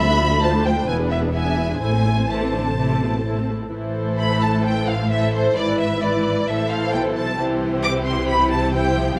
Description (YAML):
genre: quick classical-period movement for string orchestra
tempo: 131 BPM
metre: 4/4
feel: rubato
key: A minor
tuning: A4 = 440 Hz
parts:
  - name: rich studio violin section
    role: melody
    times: 0.0-9.2 s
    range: C5 to D6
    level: -26 LUFS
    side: equal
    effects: none
  - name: warm studio violin section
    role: second line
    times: 0.0-9.2 s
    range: G4 to E5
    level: -28 LUFS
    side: equal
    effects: none
  - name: rich studio viola section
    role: accompaniment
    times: 0.0-9.2 s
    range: E3 to A4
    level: -28 LUFS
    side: equal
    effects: none
  - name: clear studio cello section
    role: bass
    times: 0.0-9.2 s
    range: D2 to E3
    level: -27 LUFS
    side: equal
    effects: none
  - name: rich studio double bass section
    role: bass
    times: 0.0-9.2 s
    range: E1 to D2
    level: -28 LUFS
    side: equal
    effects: none
room: wet recital hall reverb, RT60 1.7 s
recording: none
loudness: -20 LUFS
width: mono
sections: 0.0-3.7 A section; 3.7-9.2 B section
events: none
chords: 0.0 Dm; 0.9 E7; 1.8 Am; 5.6 E7/G#; 6.5 Am; 7.4 C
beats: 0.42 0.87 1.33 | 1.80 2.28 2.77 3.25 | 3.72 4.18 4.64 5.10 | 5.56 6.01 6.47 6.93 | 7.38 7.83 8.28 8.72 | 9.18